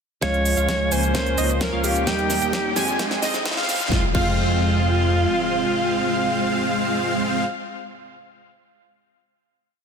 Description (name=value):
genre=EDM, festival progressive house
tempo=130 BPM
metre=4/4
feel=straight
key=F minor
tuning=A4 = 440 Hz
part: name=breathy alto saxophone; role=melody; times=0.2-7.4 s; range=F4 to Db5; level=-26 LUFS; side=equal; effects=ping-pong delay
part: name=picked steel-string acoustic guitar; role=accompaniment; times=0.2-7.5 s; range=F3 to G4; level=-29 LUFS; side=right 4 dB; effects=sidechain pumping, ping-pong delay
part: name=lush unison pad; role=sustained chords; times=0.8-7.2 s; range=C3 to G4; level=-32 LUFS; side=right 1 dB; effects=chorus, phaser, sidechain pumping
part: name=plucky unison lead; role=arpeggios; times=0.2-7.4 s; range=Eb5 to Ab5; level=-27 LUFS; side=equal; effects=vintage 12-bit sampler grit, sidechain pumping, ping-pong delay
part: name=dense compressed supersaw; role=riff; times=0.2-7.4 s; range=Ab3 to Ab5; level=-26 LUFS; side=equal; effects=sidechain pumping, low-pass filter, ping-pong delay
part: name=saturated sub bass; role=bass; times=0.2-5.3 s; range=Db2 to F2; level=-25 LUFS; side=left 1 dB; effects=sidechain pumping
part: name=big-room dance drum kit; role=drums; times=0.2-4.3 s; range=crash cymbal, hi-hat, shaker, snare drum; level=-27 LUFS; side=right 1 dB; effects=none
part: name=electronic kick drum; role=drums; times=0.2-4.3 s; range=none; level=-26 LUFS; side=left 1 dB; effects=high-pass filter on kick
part: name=riser and impact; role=sound effects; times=2.5-7.3 s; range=none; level=-33 LUFS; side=equal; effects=none
room=light reverb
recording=dense, heavily limited modern master, high-pass filter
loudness=-19 LUFS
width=side -6 dB against mid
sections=0.2-3.9 build; 3.9-7.6 final chord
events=build-up 0.2-3.9; drum fill 0.2-3.9; filter sweep on supersaw synth 0.2-3.9; filter sweep on digital synth lead 0.2-3.9; filter sweep 0.2-3.9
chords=0.2 Db; 1.1 Bbm/Db; 2.1 Eb; 3.0 Fm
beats=| 0.23 0.69 1.15 1.61 | 2.07 2.53 2.99 3.46 | 3.92 4.38 4.84 5.30 | 5.76 6.22 6.69 7.15